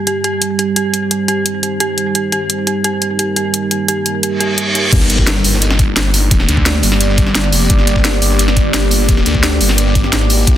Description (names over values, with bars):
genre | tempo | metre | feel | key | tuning
dark technical drum and bass | 173 BPM | 4/4 | straight | G minor | A4 = 440 Hz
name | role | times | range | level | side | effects
deep dark ambient pad | sustained chords | 0.0-10.6 s | G3 to D5 | -19 LUFS | right 2 dB | chorus, built-in reverb, sidechain pumping
dark detuned synth bell | arpeggios | 0.1-4.8 s | G4 | -18 LUFS | right 1 dB | chorus, tremolo, sidechain pumping, tape echo
drum and bass drum kit | drums | 0.1-10.5 s | crash cymbal, hi-hat, snare drum | -16 LUFS | equal | overdrive
reverse cymbal and impact | sound effects | 4.4-6.3 s | none | -20 LUFS | equal | none
phased detuned saw bass | bass | 4.9-10.6 s | F1 to D2 | -14 LUFS | equal | phaser
crunchy breakbeat drum kit | drums | 4.9-10.6 s | hi-hat, snare drum | -27 LUFS | equal | none
electronic kick drum | drums | 4.9-10.5 s | none | -14 LUFS | equal | overdrive
room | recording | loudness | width
light reverb, digital ambience | dense, heavily limited modern master | -11 LUFS | side -11 dB against mid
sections
0.0-4.9 A section; 4.9-10.6 B section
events
filter sweep on ambient pad 0.0-4.9; reverse cymbal 4.4-4.9; drop 4.9-10.6; impact 4.9-6.3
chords
0.0 Cm; 4.9 Gm